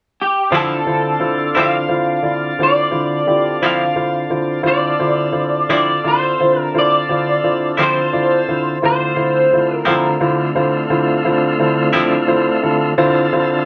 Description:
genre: blues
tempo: 58 BPM (dotted quarters)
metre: 12/8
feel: straight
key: D minor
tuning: A4 = 440 Hz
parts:
  - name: electric guitar through a small old amp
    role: melody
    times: 0.2-10.2 s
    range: G4 to F5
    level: -19 LUFS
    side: equal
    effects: ensemble chorus
  - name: semi-hollow electric guitar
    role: accompaniment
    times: 0.5-12.2 s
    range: D3 to E4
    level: -20 LUFS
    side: equal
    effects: tremolo
  - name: warm upright piano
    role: accompaniment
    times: 0.5-13.6 s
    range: D3 to D5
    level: -20 LUFS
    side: equal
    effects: none
  - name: tonewheel organ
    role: sustained chords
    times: 0.5-13.7 s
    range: D3 to A4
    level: -24 LUFS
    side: equal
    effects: slow rotary speaker
room: moderate studio reverb, RT60 0.6 s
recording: none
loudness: -16 LUFS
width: mono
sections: 0.5-13.7 A section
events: none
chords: 0.0 N.C.; 0.5 Dm9

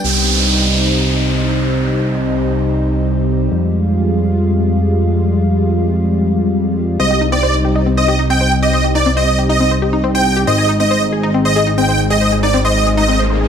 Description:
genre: trance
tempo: 138 BPM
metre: 4/4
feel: straight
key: C minor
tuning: A4 = 440 Hz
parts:
  - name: lush unison pad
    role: sustained chords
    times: 0.0-13.5 s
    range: G3 to F4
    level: -18 LUFS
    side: equal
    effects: chorus
  - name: fat analog bass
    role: bass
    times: 0.0-13.5 s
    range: Ab1 to F2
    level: -16 LUFS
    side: equal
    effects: none
  - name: downlifter and riser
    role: sound effects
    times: 0.0-3.5, 12.0-13.5 s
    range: none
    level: -21 LUFS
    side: right 2 dB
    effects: none
  - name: supersaw chords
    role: melody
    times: 7.0-13.2 s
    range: D5 to G5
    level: -16 LUFS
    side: right 1 dB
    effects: analog chorus, tape echo
  - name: tight sequenced synth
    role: arpeggios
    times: 7.0-13.5 s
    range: C4 to C5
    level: -20 LUFS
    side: left 3 dB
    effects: chorus, tape echo
room: moderate digital room reverb, RT60 1.1 s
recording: none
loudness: -12 LUFS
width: side -8 dB against mid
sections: 0.0-13.5 A section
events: none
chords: 0.0 Cm; 3.5 Fmadd9; 7.0 Cm; 10.5 Ab

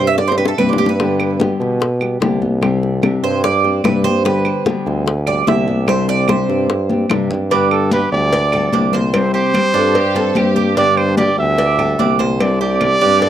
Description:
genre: latin, Cuban son and guajira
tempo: 147 BPM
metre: 4/4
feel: straight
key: G major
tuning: A4 = 438 Hz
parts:
  - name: nylon-string guitar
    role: accompaniment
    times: 0.0-13.3 s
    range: C3 to G4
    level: -20 LUFS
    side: left 4 dB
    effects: none
  - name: Cuban tres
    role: arpeggios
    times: 0.0-13.3 s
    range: D4 to E5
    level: -19 LUFS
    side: right 7 dB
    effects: tape echo
  - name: clear tuba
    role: bass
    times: 0.0-13.3 s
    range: C2 to B2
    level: -19 LUFS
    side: right 1 dB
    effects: none
  - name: bongos and cowbell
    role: percussion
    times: 0.2-13.3 s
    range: none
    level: -22 LUFS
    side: left 4 dB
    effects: none
  - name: congas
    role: percussion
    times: 0.2-13.3 s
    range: none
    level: -21 LUFS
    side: left 2 dB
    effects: none
  - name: claves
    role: percussion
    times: 0.6-13.0 s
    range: none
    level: -25 LUFS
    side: right 7 dB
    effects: none
  - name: breathy trumpet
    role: melody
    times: 7.5-13.3 s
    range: A4 to E5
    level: -17 LUFS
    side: right 1 dB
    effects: none
  - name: dark studio violin section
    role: second line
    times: 9.8-13.3 s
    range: G4 to A4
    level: -21 LUFS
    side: left 3 dB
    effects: none
room: light reverb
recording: dry, close 1970s-style studio recording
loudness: -13 LUFS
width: side -10 dB against mid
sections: 0.0-7.5 A section; 7.5-13.3 B section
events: Cuban tres solo 0.0-7.5; drum fill 0.2-1.0, 6.9-7.5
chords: 0.0 Csus2; 1.0 G; 5.9 Csus2; 7.5 Gadd9; 9.1 Csus2; 10.8 Gadd9; 12.4 Csus2

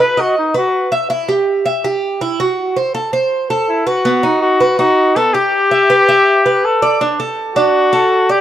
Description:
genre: latin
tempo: 163 BPM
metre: 4/4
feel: straight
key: E minor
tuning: A4 = 441 Hz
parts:
  - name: warm trumpet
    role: melody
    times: 0.0-0.9, 3.7-8.4 s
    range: D#4 to B4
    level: -12 LUFS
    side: left 2 dB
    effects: none
  - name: Cuban tres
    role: arpeggios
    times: 0.0-8.4 s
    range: B3 to E5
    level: -15 LUFS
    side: right 3 dB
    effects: none
room: light reverb, studio reverb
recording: dry, close 1970s-style studio recording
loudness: -12 LUFS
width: side -11 dB against mid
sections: 0.0-7.0 A section; 7.0-8.4 B section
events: none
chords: 0.0 B; 1.1 Em; 2.6 F#dim; 4.1 B; 5.5 Em; 7.0 D

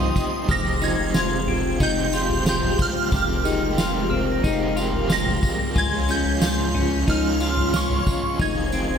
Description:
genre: dream pop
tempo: 91 BPM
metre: 4/4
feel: straight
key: F minor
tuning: A4 = 440 Hz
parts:
  - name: shimmering bell with halo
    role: melody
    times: 0.0-9.0 s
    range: Db6 to Bb6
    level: -27 LUFS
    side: right 2 dB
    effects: ensemble chorus, phaser, ping-pong delay
  - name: overdriven electric guitar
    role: accompaniment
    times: 0.0-9.0 s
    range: F2 to G4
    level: -28 LUFS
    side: right 4 dB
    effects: tremolo, lush chorus
  - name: string machine, full ensemble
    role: sustained chords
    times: 0.0-9.0 s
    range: Ab3 to Ab5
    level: -28 LUFS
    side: equal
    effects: phaser, ensemble chorus
  - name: semi-hollow electric guitar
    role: arpeggios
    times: 0.0-9.0 s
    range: C4 to G4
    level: -26 LUFS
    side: left 6 dB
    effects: lush chorus, ping-pong delay
  - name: round analog bass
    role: bass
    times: 0.0-9.0 s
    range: F1 to Db2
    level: -27 LUFS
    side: equal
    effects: none
  - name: soft-mallet drum kit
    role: drums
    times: 0.2-8.9 s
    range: kick drum, snare drum, tambourine, toms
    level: -25 LUFS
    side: equal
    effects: none
  - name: glockenspiel with hard plastic mallets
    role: texture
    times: 0.5-6.6 s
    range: Ab5 to C7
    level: -39 LUFS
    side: right 2 dB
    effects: ping-pong delay
room: moderate concert hall reverb, RT60 1.9 s, small room ambience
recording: none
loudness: -19 LUFS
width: side -7 dB against mid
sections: 0.0-9.0 A section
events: none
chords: 0.5 Fmadd9; 5.8 Db; 8.4 Fm7

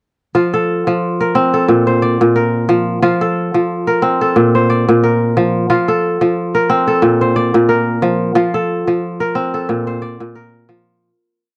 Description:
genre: west african traditional, West African string and xylophone music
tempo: 90 BPM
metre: 4/4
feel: swing 55% on 16ths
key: F major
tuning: A4 = 440 Hz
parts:
  - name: kora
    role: solo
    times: 0.3-11.6 s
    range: Bb2 to D5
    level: -15 LUFS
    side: equal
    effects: none
room: light reverb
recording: dry, close 1970s-style studio recording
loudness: -15 LUFS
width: mono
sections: 0.3-11.0 A section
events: fade-out 8.4-11.0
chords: 0.3 F; 1.7 Bb; 3.0 F; 4.4 Bb; 5.7 F; 7.0 Bb; 8.4 F; 9.7 Bb

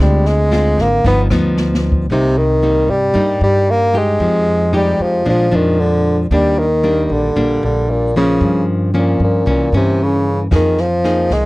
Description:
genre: bossa nova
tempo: 114 BPM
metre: 4/4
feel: straight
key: C minor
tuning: A4 = 440 Hz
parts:
  - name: warm bassoon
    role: melody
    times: 0.0-11.5 s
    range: Bb2 to B3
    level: -15 LUFS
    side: equal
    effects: none
  - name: nylon-string guitar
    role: accompaniment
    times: 0.0-11.5 s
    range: G2 to Ab4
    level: -17 LUFS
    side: left 1 dB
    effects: none
  - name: upright bass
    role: bass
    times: 0.0-11.5 s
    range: G1 to G2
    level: -18 LUFS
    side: equal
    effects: none
  - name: open jazz drum kit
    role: drums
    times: 0.3-2.0, 10.5-11.4 s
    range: kick drum, rim click, snare drum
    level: -20 LUFS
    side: equal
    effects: none
room: little or no reverb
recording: dry, close 1970s-style studio recording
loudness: -12 LUFS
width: side -20 dB against mid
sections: 0.0-2.1 A section; 2.1-11.5 B section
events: bassoon solo 0.0-2.1; drum fill 1.6-2.1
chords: 0.0 Dm7b5; 1.0 G7b13; 2.1 Cm7; 4.2 Fm9; 5.2 Bb7; 6.3 Ebmaj7; 8.4 Gm7b5; 9.5 C7b9; 10.5 Fm7

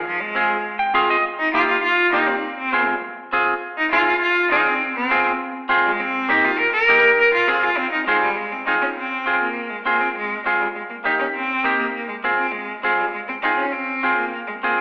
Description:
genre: latin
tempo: 202 BPM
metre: 4/4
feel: straight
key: F minor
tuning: A4 = 443 Hz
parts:
  - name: clear cello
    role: melody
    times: 0.0-14.8 s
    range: F3 to Bb4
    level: -19 LUFS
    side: equal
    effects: none
  - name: clean electric guitar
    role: accompaniment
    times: 0.3-14.8 s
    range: Bb3 to G5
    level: -19 LUFS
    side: equal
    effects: none
room: wet recital hall reverb, RT60 1.5 s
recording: recorded in a church or concert hall, telephone sound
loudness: -16 LUFS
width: side -24 dB against mid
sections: 0.0-8.4 A section; 8.4-14.8 B section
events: cello solo 0.0-8.4; clean electric guitar fill 0.7-1.2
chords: 0.0 Fm; 1.2 Eb; 2.4 Fm; 6.0 Eb; 7.2 Fm; 10.8 Eb; 12.0 Fm

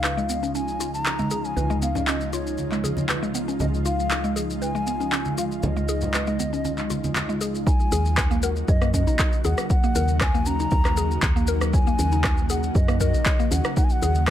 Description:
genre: afro house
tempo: 118 BPM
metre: 4/4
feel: straight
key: Eb minor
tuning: A4 = 440 Hz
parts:
  - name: bansuri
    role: melody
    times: 0.0-14.3 s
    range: Db5 to Bb5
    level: -30 LUFS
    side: left 2 dB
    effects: ping-pong delay
  - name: ethereal airy pad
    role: sustained chords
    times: 0.0-14.3 s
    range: Db3 to Gb4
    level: -29 LUFS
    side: equal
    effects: ensemble chorus, built-in reverb, sidechain pumping
  - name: mallet-like synth pluck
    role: arpeggios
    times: 0.0-14.1 s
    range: Ab3 to Db5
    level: -29 LUFS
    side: left 1 dB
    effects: chorus, sidechain pumping, ping-pong delay
  - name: woody FM bass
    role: bass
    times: 0.0-14.3 s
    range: Bb1 to Gb2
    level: -27 LUFS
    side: equal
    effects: sidechain pumping
  - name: electronic handclaps and rim click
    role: drums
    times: 0.0-14.3 s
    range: none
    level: -26 LUFS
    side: equal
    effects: overdrive
  - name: maracas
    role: percussion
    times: 0.0-14.3 s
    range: none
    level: -36 LUFS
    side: left 4 dB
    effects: none
  - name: congas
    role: percussion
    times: 1.2-7.3 s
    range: none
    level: -31 LUFS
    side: right 2 dB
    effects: none
  - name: electronic kick drum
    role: drums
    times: 7.7-14.3 s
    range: none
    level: -22 LUFS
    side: equal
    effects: none
room: light reverb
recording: none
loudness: -20 LUFS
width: side -11 dB against mid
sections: 0.0-7.7 A section; 7.7-14.3 B section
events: drop 7.7-14.3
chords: 0.0 Dbadd9; 7.7 Ebm7

